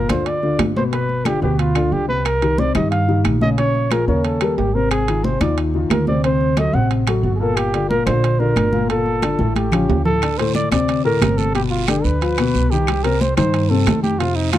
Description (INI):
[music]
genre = Afro-Cuban jazz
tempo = 181 BPM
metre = 4/4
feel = straight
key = G minor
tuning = A4 = 445 Hz
[part]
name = dark trumpet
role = melody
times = 0.0-14.6 s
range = Eb4 to F#5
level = -22 LUFS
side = right 2 dB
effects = none
[part]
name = warm upright piano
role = accompaniment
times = 0.0-14.6 s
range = A2 to C#5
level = -20 LUFS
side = left 4 dB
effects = none
[part]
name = upright bass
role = bass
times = 0.0-14.6 s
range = G1 to G2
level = -21 LUFS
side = right 2 dB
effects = none
[part]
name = claves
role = percussion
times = 0.1-14.6 s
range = none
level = -32 LUFS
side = left 13 dB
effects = none
[part]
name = congas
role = percussion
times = 0.1-14.6 s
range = none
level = -24 LUFS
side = left 1 dB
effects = none
[part]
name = timbales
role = percussion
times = 0.1-14.6 s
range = none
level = -25 LUFS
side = right 11 dB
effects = none
[part]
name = guiro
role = percussion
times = 10.2-14.6 s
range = none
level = -33 LUFS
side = right 18 dB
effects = none
[sound]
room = small room ambience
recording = dry, close 1970s-style studio recording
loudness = -15 LUFS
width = side -12 dB against mid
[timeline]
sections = 0.0-10.2 A section; 10.2-14.6 B section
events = drum fill 9.2-10.2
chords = 0.0 G7(no3); 0.9 G7; 2.3 Cm7; 3.6 Bbm7; 4.2 Eb7; 4.9 Ab6; 6.2 D7; 7.6 Gm9; 9.6 Aaug7; 10.2 D5; 11.5 G7; 12.9 Cm